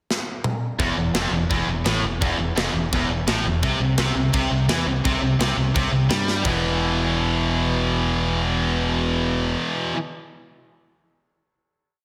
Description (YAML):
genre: heavy metal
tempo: 170 BPM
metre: 4/4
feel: straight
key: E minor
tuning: A4 = 441 Hz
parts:
  - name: tight metal drum kit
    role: drums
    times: 0.1-6.5 s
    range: china cymbal, crash cymbal, kick drum, snare drum, toms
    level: -28 LUFS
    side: equal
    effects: none
  - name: heavy high-gain guitar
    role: riff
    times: 0.8-10.0 s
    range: E2 to G3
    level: -28 LUFS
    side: equal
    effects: distortion
  - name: high-gain distorted guitar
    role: riff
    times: 0.8-10.0 s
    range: E2 to G3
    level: -26 LUFS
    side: equal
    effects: distortion
  - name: growling fingered electric bass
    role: bass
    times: 0.8-9.5 s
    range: E1 to G2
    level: -29 LUFS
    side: equal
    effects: overdrive
room: moderate scoring stage reverb, RT60 1.9 s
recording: big arena sound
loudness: -22 LUFS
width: mono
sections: 0.0-0.8 pickup bar; 0.8-6.5 riff; 6.5-9.2 final chord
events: drum fill 0.1-0.8, 6.3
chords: 0.0 N.C.; 0.8 Fmaj7/E; 3.6 C5; 6.5 E5